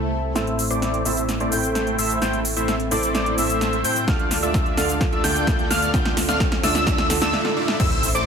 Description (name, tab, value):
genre	EDM, festival progressive house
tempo	129 BPM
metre	4/4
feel	straight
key	A minor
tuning	A4 = 441 Hz
part	felt-muted upright piano	accompaniment	0.0-7.8 s	A2 to C5	-27 LUFS	right 2 dB	sidechain pumping, digital delay
part	lush unison pad	sustained chords	0.0-8.3 s	C3 to A4	-32 LUFS	equal	none
part	wide detuned saw bass	bass	0.0-8.3 s	A1 to A2	-29 LUFS	equal	chorus, tube saturation, sidechain pumping
part	swell, riser and impact	sound effects	0.0-8.3 s	none	-32 LUFS	right 1 dB	none
part	wide unison lead	arpeggios	0.4-8.3 s	D6 to G6	-26 LUFS	equal	sidechain pumping, digital delay
part	dense compressed supersaw	riff	0.4-8.3 s	A3 to G5	-26 LUFS	equal	sidechain pumping, low-pass filter, digital delay
part	big-room dance drum kit	drums	0.4-8.2 s	crash cymbal, hi-hat, rim click, shaker, snare drum	-25 LUFS	equal	overdrive
part	electronic kick drum	drums	4.1-7.9 s	none	-23 LUFS	equal	overdrive
room	light reverb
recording	none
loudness	-18 LUFS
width	side -6 dB against mid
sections	0.4-7.8 A section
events	swell 0.0-0.4; build-up 0.4-7.8; drum fill 0.4-7.3, 7.3-7.8; filter sweep on supersaw synth 0.4-7.8; filter sweep on analog synth lead 0.4-7.8; impact 7.8-8.3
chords	0.4 Am; 4.1 Dm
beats	| 0.36 0.82 1.29 1.75 | 2.22 2.68 3.15 3.61 | 4.08 4.54 5.01 5.47 | 5.94 6.40 6.87 7.33 | 7.80